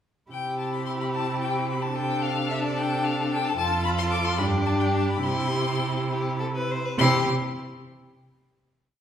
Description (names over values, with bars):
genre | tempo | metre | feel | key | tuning
quick classical-period movement for string quartet | 68-74 BPM (dotted quarters) | 6/8 | straight | C major | A4 = 441 Hz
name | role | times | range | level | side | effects
clear violin | melody | 0.3-7.3 s | D5 to D6 | -29 LUFS | left 5 dB | none
clear violin | second line | 0.3-7.3 s | G4 to C5 | -30 LUFS | left 2 dB | none
rich viola | accompaniment | 0.3-7.3 s | D4 to F4 | -30 LUFS | equal | none
rich cello | bass | 0.3-7.3 s | F2 to C3 | -28 LUFS | right 2 dB | none
room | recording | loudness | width
wet recital hall reverb, RT60 1.5 s | heard from further back in the room | -23 LUFS | side -9 dB against mid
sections
0.3-7.0 A section; 7.0-8.7 final chord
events
none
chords
0.3 C; 2.0 D5/C; 3.6 F; 4.4 G5; 5.2 C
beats
| 0.32 1.14 | 1.96 2.76 | 3.57 4.39 | 5.24 6.11 | 6.99